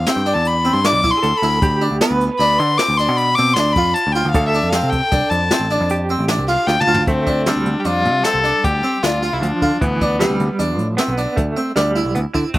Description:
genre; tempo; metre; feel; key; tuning
progressive instrumental, band music in an uneven meter; 154 BPM; 7/4; straight; D dorian; A4 = 441 Hz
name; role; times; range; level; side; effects
warm violin; melody; 0.0-12.6 s; A3 to D6; -18 LUFS; left 2 dB; slapback echo
clean electric guitar; second line; 0.0-12.6 s; E3 to C5; -24 LUFS; right 3 dB; tremolo
picked electric bass; bass; 0.0-12.6 s; A1 to D3; -21 LUFS; equal; none
harpsichord; arpeggios; 0.1-12.5 s; C3 to F4; -21 LUFS; right 1 dB; slapback echo
jazz brush drum kit; drums; 0.1-12.6 s; hi-hat, kick drum, snare drum, toms; -21 LUFS; equal; none
room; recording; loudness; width
little or no reverb; recorded outdoors, with no room sound; -14 LUFS; side -16 dB against mid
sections
0.0-7.1 A section; 7.1-12.6 B section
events
violin solo 0.0-7.1; drum fill 6.7-7.1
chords
0.0 Cmaj9; 1.6 G7/D; 4.3 Dm7; 9.8 Cmaj9

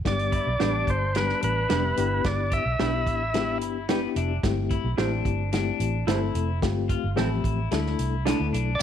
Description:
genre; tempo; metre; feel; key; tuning
uptempo 1960s-style soul; 110 BPM; 4/4; straight; G mixolydian; A4 = 437 Hz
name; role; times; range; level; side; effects
reed electric piano; accompaniment; 0.0-8.7 s; F3 to B5; -30 LUFS; left 10 dB; fast tremolo
overdriven tonewheel organ; melody; 0.1-3.6, 8.8 s; B4 to E5; -27 LUFS; right 1 dB; none
vintage muted fingered electric bass; bass; 0.1-8.8 s; F1 to D2; -28 LUFS; right 1 dB; none
warm soul drum kit; drums; 0.1-8.7 s; hi-hat, kick drum, snare drum; -30 LUFS; right 2 dB; none
electric guitar through a small old amp; riff; 0.3-8.7 s; B3 to G4; -34 LUFS; left 10 dB; none
electric guitar through a small old amp; stabs; 0.6-8.4 s; C4 to C5; -32 LUFS; right 12 dB; none
room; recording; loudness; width
light reverb, studio reverb; 1960s-style stereo with parts hard left and right; -23 LUFS; side -9 dB against mid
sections
0.0-8.8 A section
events
reed electric piano fill 3.3-4.4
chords
0.1 G; 2.0 Em7/G; 4.4 Am7/G; 6.6 Fadd9/G; 7.7 Dsus2

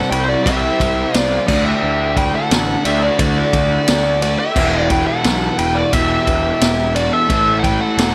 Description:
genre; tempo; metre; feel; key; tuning
classic rock; 88 BPM; 4/4; straight; E minor; A4 = 435 Hz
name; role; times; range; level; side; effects
bluesy overdriven lead guitar; melody; 0.0-8.1 s; C5 to G5; -21 LUFS; equal; distortion
octave-fuzz lead guitar; second line; 0.0-8.1 s; E4 to B4; -28 LUFS; equal; distortion, tape echo
string machine, violas; sustained chords; 0.0-8.1 s; E4 to F#5; -34 LUFS; equal; none
crunchy overdriven guitar; riff; 0.0-8.1 s; E2 to D4; -26 LUFS; equal; none
crunchy overdriven guitar; riff; 0.0-8.1 s; E2 to D4; -27 LUFS; equal; none
fuzz picked electric bass; bass; 0.1-8.1 s; E1 to D2; -23 LUFS; equal; overdrive
vintage drum kit; drums; 0.1-8.1 s; crash cymbal, kick drum, ride cymbal, snare drum; -22 LUFS; equal; none
room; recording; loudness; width
light reverb; none; -16 LUFS; mono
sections
0.0-8.1 A section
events
none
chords
0.0 C; 1.5 Dadd9; 4.6 Em; 7.3 Am

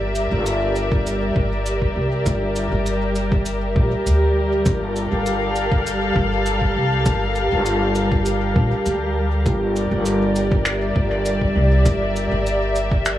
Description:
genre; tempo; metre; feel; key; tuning
ambient dub; 100 BPM; 4/4; straight; unclear; A4 = 442 Hz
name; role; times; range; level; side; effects
dark studio string section; sustained chords; 0.0-13.2 s; G3 to F5; -21 LUFS; equal; none
upright bass; bass; 0.0-13.2 s; G1 to D2; -21 LUFS; equal; none
cabasa and finger snaps; drums; 0.2-13.2 s; none; -28 LUFS; equal; dub echo
electronic kick drum; drums; 0.9-13.0 s; none; -22 LUFS; equal; none
room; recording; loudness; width
moderate spring reverb, RT60 2.5 s; small room ambience; -17 LUFS; side -13 dB against mid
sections
0.0-13.2 A section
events
none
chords
0.0 C7/G (rootless); 4.7 Gm7; 9.5 C7/G (rootless)

